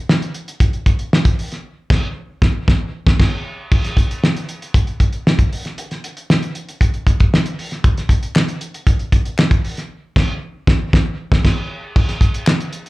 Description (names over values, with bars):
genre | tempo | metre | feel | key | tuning
funk | 116 BPM | 4/4 | straight | none | none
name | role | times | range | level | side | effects
cloth-damped thuddy drum kit | drums | 0.1-12.9 s | crash cymbal, hi-hat, kick drum, snare drum | -15 LUFS | equal | none
group handclap | percussion | 8.4-12.6 s | none | -26 LUFS | left 4 dB | slapback echo
room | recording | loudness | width
light reverb | live gig heard through the venue's PA, cassette tape, club reverb | -15 LUFS | side -20 dB against mid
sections
0.0-3.7 A section; 3.7-12.0 B section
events
band accent 1.6-3.7, 9.9-12.0; silent gap 10.9-12.0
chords
none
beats
0.09 0.61 1.12 | 1.64 2.16 2.68 3.19 | 3.71 4.23 4.74 5.26 | 5.78 6.29 6.81 7.33 | 7.84 8.36 8.87 9.39 | 9.90 10.42 10.93 11.45 | 11.96 12.47